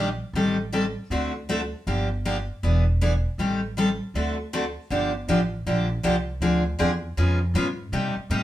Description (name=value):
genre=acoustic string swing (jazz manouche)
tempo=158 BPM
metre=4/4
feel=swing 61% on 8ths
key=G minor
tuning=A4 = 440 Hz
part: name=picked steel-string acoustic guitar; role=accompaniment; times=0.0-8.4 s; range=C3 to A4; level=-24 LUFS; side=left 1 dB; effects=none
part: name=upright bass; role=bass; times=0.0-8.4 s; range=E1 to C3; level=-26 LUFS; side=equal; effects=none
room=moderate studio reverb, RT60 0.6 s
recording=band playing live in one room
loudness=-22 LUFS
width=side -13 dB against mid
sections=0.0-4.9 A section; 4.9-8.4 A section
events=none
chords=0.4 Am7b5; 1.1 D7; 1.9 Gm7; 2.6 E7; 3.4 Am7b5; 4.1 D7; 4.9 Gm7; 6.4 Dm7b5; 7.2 C#7